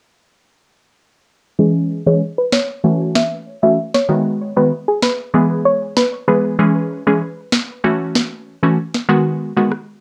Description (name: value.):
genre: dancehall.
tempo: 96 BPM.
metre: 4/4.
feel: straight.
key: C# minor.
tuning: A4 = 441 Hz.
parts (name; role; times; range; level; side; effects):
wavetable chord stab; accompaniment; 1.6-9.7 s; D#3 to G#4; -18 LUFS; equal; low-pass filter.
soft round pluck; melody; 2.1-6.4 s; G#4 to E5; -20 LUFS; equal; chorus, low-pass filter, tape echo.
electronic snare drum and rim click; drums; 2.5-9.9 s; none; -19 LUFS; equal; none.
room: moderate studio reverb, RT60 0.6 s.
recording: cassette tape.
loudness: -17 LUFS.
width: mono.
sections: 1.6-10.0 A section.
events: filter sweep 1.6-10.0.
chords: 1.6 C#m; 2.8 F#m7; 4.1 G#m7; 5.3 E; 6.6 C#m; 7.8 F#m7; 9.1 G#m7.